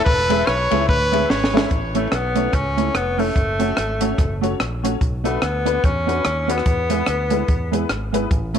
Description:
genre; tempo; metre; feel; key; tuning
ska; 145 BPM; 4/4; swing 58% on 8ths; A major; A4 = 440 Hz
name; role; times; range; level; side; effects
brilliant trumpet; melody; 0.0-1.7 s; B4 to C#5; -21 LUFS; equal; tape echo
fingered electric bass; bass; 0.1-8.6 s; E1 to E2; -25 LUFS; equal; none
compact cocktail drum kit; drums; 0.1-8.6 s; hi-hat, kick drum, ride cymbal, rim click, snare drum; -22 LUFS; equal; none
mellow electric guitar; accompaniment; 0.3-8.6 s; G#3 to F#4; -25 LUFS; right 15 dB; none
honky-tonk upright piano; stabs; 0.3-8.6 s; B3 to E5; -26 LUFS; left 11 dB; none
warm tenor saxophone; melody; 2.0-7.7 s; A3 to C#4; -23 LUFS; left 2 dB; none
room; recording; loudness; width
moderate spring reverb, RT60 2.1 s; 1960s-style stereo with parts hard left and right; -17 LUFS; side -8 dB against mid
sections
0.0-1.7 A section; 1.7-8.6 B section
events
trumpet solo 0.0-1.7; drum fill 1.3-1.7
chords
0.1 E; 1.7 A; 3.4 F#m; 5.0 Bm; 6.7 E

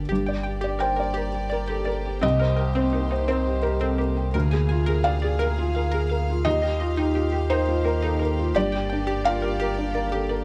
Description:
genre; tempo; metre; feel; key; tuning
neoclassical piano and strings; 85 BPM; 3/4; rubato; G minor; A4 = 440 Hz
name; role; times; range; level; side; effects
felt-muted upright piano; accompaniment; 0.0-10.4 s; C2 to G5; -27 LUFS; equal; none
warm chamber string section; sustained chords; 0.0-10.4 s; Bb3 to F5; -38 LUFS; equal; none
warm sub bass; bass; 0.0-10.4 s; G1 to Eb2; -29 LUFS; equal; none
analog pluck; arpeggios; 0.1-10.4 s; C4 to Ab5; -32 LUFS; equal; chorus, slapback echo
room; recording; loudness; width
light reverb; none; -24 LUFS; mono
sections
0.1-10.4 A section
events
none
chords
0.1 Gm; 2.2 Cm7; 4.3 Bb7/D; 6.5 Ebadd9; 8.6 Gm

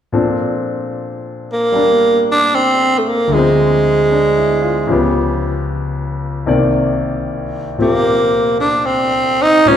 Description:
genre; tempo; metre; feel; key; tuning
jazz; 76 BPM; 4/4; swing 69% on 8ths; Bb major; A4 = 440 Hz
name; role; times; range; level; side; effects
clear concert grand piano; accompaniment; 0.1-9.8 s; C2 to D5; -17 LUFS; left 2 dB; none
growling tenor saxophone; melody; 1.5-9.8 s; Ab3 to Eb4; -12 LUFS; right 2 dB; none
room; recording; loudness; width
wet recital hall reverb, RT60 1.6 s; recorded in a church or concert hall; -13 LUFS; side -9 dB against mid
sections
0.1-9.8 A section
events
none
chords
0.1 Bbmaj9; 3.3 Dm7b5; 4.9 Db7#11; 6.5 Cm9

